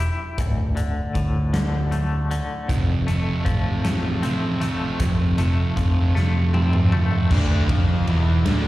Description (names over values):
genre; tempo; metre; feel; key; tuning
quiet-loud alternative rock; 52 BPM (dotted quarters); 6/8; straight; D minor; A4 = 440 Hz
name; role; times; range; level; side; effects
twangy electric guitar; arpeggios; 0.0-7.3 s; D2 to G4; -29 LUFS; left 4 dB; tremolo, slapback echo
picked electric bass; bass; 0.0-8.7 s; D1 to F2; -22 LUFS; equal; none
huge arena drum kit; drums; 0.4-8.6 s; crash cymbal, hi-hat, kick drum, ride cymbal, snare drum, toms; -25 LUFS; equal; none
thick fuzz guitar; riff; 2.7-8.7 s; D2 to F3; -23 LUFS; right 2 dB; distortion
crunchy overdriven guitar; riff; 7.3-8.7 s; D2 to F3; -30 LUFS; left 8 dB; slapback echo
distorted electric guitar; riff; 7.3-8.7 s; D2 to F3; -30 LUFS; left 1 dB; distortion
room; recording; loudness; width
studio reverb; live gig heard through the venue's PA, recital hall reverb; -19 LUFS; side -16 dB against mid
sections
0.0-7.3 A section; 7.3-8.7 B section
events
drum fill 6.2-7.3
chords
0.4 D5; 2.7 F; 7.3 Dm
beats
| 0.38 1.53 | 2.69 3.85 | 5.00 6.15 | 7.30 8.46